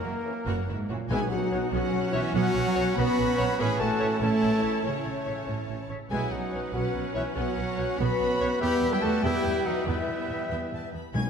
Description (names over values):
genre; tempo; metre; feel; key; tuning
cinematic, heroic adventure film score; 95 BPM (dotted quarters); 6/8; straight; unclear; A4 = 438 Hz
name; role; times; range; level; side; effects
warm symphonic violin section; melody; 0.0-11.3 s; A#4 to G#6; -38 LUFS; left 4 dB; none
clear symphonic violin section; second line; 0.0-11.3 s; F#4 to B5; -43 LUFS; left 3 dB; none
silver concert flute; second line; 0.0-11.3 s; A#4 to B5; -36 LUFS; left 1 dB; none
warm oboe; second line; 0.0-11.3 s; A#4 to G5; -43 LUFS; equal; none
rich symphonic viola section; accompaniment; 0.0-11.2 s; E3 to C#5; -36 LUFS; equal; none
dark French horn section; sustained chords; 0.0-10.9 s; A#3 to B4; -31 LUFS; left 3 dB; none
clear trumpet; stabs; 0.0-10.9 s; A3 to G#4; -36 LUFS; right 2 dB; none
dark symphonic cello section; bass; 0.0-11.2 s; F#2 to B3; -31 LUFS; right 2 dB; none
warm symphonic double bass section; bass; 0.0-11.2 s; F#1 to E2; -32 LUFS; right 4 dB; none
warm trombone section; sustained chords; 0.2-10.9 s; E3 to C#4; -36 LUFS; right 3 dB; none
timpani; percussion; 1.1-1.7, 11.1-11.3 s; B2; -33 LUFS; left 2 dB; none
bright clarinet; second line; 1.5-11.3 s; C#5 to E5; -38 LUFS; left 2 dB; none
room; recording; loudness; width
wet scoring stage reverb, RT60 1.9 s; none; -24 LUFS; side -6 dB against mid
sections
0.0-1.1 A section; 1.1-11.1 B section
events
none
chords
0.0 F#7; 1.1 Bsus2; 3.6 A; 6.1 Bsus2; 8.6 Em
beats
0.47 | 1.10 1.73 | 2.35 2.98 | 3.59 4.21 | 4.85 5.48 | 6.11 6.74 | 7.36 8.00 | 8.62 9.24 | 9.87 10.51 | 11.14